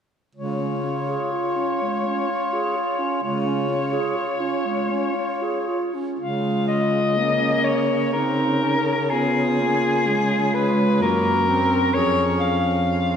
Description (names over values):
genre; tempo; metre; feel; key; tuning
classical, lyrical piece for single-reed quartet; 62 BPM; 3/4; uneven beats, rubato; Db major; A4 = 441 Hz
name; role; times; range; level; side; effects
warm soprano saxophone; melody; 0.4-13.2 s; Ab4 to F5; -23 LUFS; left 3 dB; none
clear clarinet; second line; 0.4-13.2 s; Ab3 to Ab4; -27 LUFS; right 4 dB; none
warm tenor saxophone; accompaniment; 0.4-13.2 s; Ab3 to F4; -24 LUFS; equal; none
clear baritone saxophone; bass; 0.4-13.2 s; F2 to Db3; -26 LUFS; equal; none
room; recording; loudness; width
wet concert hall reverb, RT60 2.0 s; heard from further back in the room; -19 LUFS; side -8 dB against mid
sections
0.4-6.2 A section; 6.2-13.2 B section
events
none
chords
0.4 Db; 9.1 Db7; 11.0 Gb; 11.9 Db/F